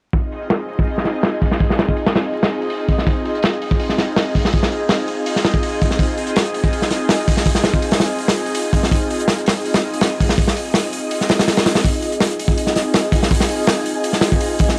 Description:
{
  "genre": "drum and bass, jungle",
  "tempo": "164 BPM",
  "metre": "4/4",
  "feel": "straight",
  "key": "F minor",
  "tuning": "A4 = 440 Hz",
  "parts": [
    { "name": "airy breathy pad", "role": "sustained chords", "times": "0.2-14.8 s", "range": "C4 to Eb5", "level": "-24 LUFS", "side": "equal", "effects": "chorus" },
    { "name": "crunchy breakbeat drum kit", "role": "drums", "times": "0.1-14.8 s", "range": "hi-hat, kick drum, snare drum", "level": "-19 LUFS", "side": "equal", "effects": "low-pass filter on kick, low-pass filter on hats, low-pass filter on snare, low-pass filter on room" },
    { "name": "wind-like tuned noise texture", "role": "texture", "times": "0.9-14.8 s", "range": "Ab4 to Ab5", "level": "-34 LUFS", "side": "equal", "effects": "built-in reverb" }
  ],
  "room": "light reverb, small room ambience",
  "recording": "dry, gritty hardware recording, transformer saturation, vinyl crackle",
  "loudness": "-18 LUFS",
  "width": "mono",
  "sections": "0.1-11.8 A section; 11.8-14.8 B section",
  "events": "filter sweep on drum 0.1-11.8; build-up 11.8-14.8",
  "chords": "0.1 Fm7"
}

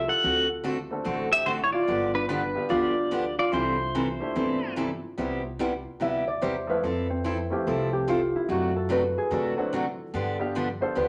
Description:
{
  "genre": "country, western swing",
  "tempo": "145 BPM",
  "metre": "4/4",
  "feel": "swing 65% on 8ths",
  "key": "C major",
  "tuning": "A4 = 440 Hz",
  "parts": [
    { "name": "pedal steel guitar", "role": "melody", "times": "0.0-4.7 s", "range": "B4 to F#5", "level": "-28 LUFS", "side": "equal", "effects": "none" },
    { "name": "concert harp", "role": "second line", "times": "0.0-11.1 s", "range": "C4 to E5", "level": "-31 LUFS", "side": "equal", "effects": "none" },
    { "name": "upright bass", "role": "bass", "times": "0.0-11.1 s", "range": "G1 to D3", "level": "-38 LUFS", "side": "equal", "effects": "none" },
    { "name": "picked steel-string acoustic guitar", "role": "accompaniment", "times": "0.2-11.1 s", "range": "C3 to A4", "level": "-32 LUFS", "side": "equal", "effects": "none" },
    { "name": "clear upright piano", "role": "accompaniment", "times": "0.9-11.0 s", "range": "F3 to A4", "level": "-36 LUFS", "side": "equal", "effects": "none" }
  ],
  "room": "wet club reverb, RT60 0.8 s",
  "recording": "none",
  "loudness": "-27 LUFS",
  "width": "mono",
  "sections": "0.0-5.2 A section; 5.2-11.1 B section",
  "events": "harp solo 5.2-11.1",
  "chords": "0.2 D7; 1.9 G7; 3.5 C69; 5.2 Cmaj7; 6.8 Fmaj7; 8.5 D7/F#; 10.1 G7"
}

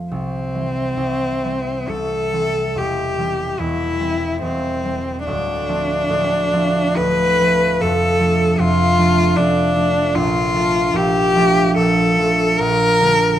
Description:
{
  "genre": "classical, romantic duo for cello and harp",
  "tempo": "64-78 BPM",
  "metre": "3/4",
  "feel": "rubato",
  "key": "C major",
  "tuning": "A4 = 440 Hz",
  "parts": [
    { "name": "concert harp", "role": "accompaniment", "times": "0.0-13.4 s", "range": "D1 to D4", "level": "-19 LUFS", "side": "right 2 dB", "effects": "none" },
    { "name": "clear cello", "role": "melody", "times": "0.1-13.4 s", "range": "C4 to B4", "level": "-17 LUFS", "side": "left 1 dB", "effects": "none" }
  ],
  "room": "moderate recital hall reverb, RT60 1.4 s",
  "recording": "close, detailed microphones",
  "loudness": "-15 LUFS",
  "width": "side -11 dB against mid",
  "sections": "0.1-13.4 A section",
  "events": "none",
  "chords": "0.1 C; 2.8 C/E; 5.3 Dm7; 7.8 Dm/F; 10.2 Bbmaj7; 12.6 Gm/Bb"
}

